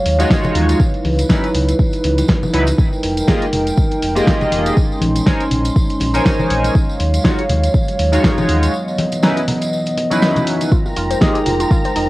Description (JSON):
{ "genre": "deep house", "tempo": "121 BPM", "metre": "4/4", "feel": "swing 57% on 16ths", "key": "unclear", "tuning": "A4 = 440 Hz", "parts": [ { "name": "dark analog pad", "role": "sustained chords", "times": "0.0-12.1 s", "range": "Fb3 to C6", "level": "-20 LUFS", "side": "right 1 dB", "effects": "chorus, sidechain pumping, cassette tape" }, { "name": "sub bass with octave", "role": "bass", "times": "0.1-12.1 s", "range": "F1 to Eb2", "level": "-18 LUFS", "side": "equal", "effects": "sidechain pumping" }, { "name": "deep house drum kit", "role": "drums", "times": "0.1-12.1 s", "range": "hi-hat, snare drum", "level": "-20 LUFS", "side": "equal", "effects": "cassette tape" }, { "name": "chorused polysynth", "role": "stabs", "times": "0.2-11.4 s", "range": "Gb3 to Ab5", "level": "-19 LUFS", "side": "equal", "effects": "sidechain pumping, cassette tape, analog delay" }, { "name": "tambourine", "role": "percussion", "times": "0.2-11.9 s", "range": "none", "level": "-33 LUFS", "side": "right 2 dB", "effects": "none" }, { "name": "electronic kick drum", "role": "drums", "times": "0.3-11.8 s", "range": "none", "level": "-16 LUFS", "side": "equal", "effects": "cassette tape" }, { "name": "congas", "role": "percussion", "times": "0.4-11.9 s", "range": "none", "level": "-24 LUFS", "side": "left 1 dB", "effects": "none" }, { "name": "warbly dusty pluck", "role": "arpeggios", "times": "10.7-12.0 s", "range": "Eb4 to C5", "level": "-21 LUFS", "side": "equal", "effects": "chorus, vintage 12-bit sampler grit, sidechain pumping, cassette tape, analog delay" }, { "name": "soft string machine", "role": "texture", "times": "10.7-12.1 s", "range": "Bb5", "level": "-26 LUFS", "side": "equal", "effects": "ensemble chorus, sidechain pumping, cassette tape" } ], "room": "light reverb", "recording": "home recording on cassette", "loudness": "-13 LUFS", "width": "side -18 dB against mid", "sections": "0.0-12.1 A section", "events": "break 8.7-10.7", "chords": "0.0 Ebm11; 0.8 Dbm11; 2.8 Fm11; 4.8 Bbm11; 6.8 Ebm11; 8.7 Dbm11; 10.7 Fm11" }